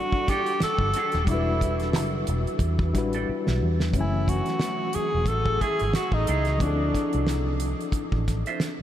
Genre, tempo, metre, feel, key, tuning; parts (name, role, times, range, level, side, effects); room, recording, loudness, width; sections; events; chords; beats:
R&B, neo-soul; 90 BPM; 4/4; swing 57% on 16ths; E minor; A4 = 438 Hz
breathy tenor saxophone; melody; 0.0-7.3 s; D4 to A4; -28 LUFS; equal
barky reed electric piano; accompaniment; 0.0-8.8 s; E3 to G#5; -30 LUFS; left 3 dB; overdrive, fast tremolo
damped 70s drum kit; drums; 0.1-8.8 s; hi-hat, kick drum, snare drum; -29 LUFS; equal
clean electric guitar; second line; 0.3-8.6 s; A3 to E5; -37 LUFS; right 5 dB; lush chorus
vintage muted fingered electric bass; bass; 0.6-8.4 s; D#1 to E2; -26 LUFS; equal
wet huge ambient reverb, RT60 8.3 s; dreamy mix soaked in reverb; -22 LUFS; side -11 dB against mid
0.0-3.9 A section; 3.9-8.8 B section
drum fill 3.3-3.9
0.0 Em11; 3.9 F#m9; 6.6 Dm9
0.61 | 1.27 1.94 2.61 3.27 | 3.94 4.61 5.27 5.94 | 6.61 7.27 7.94 8.61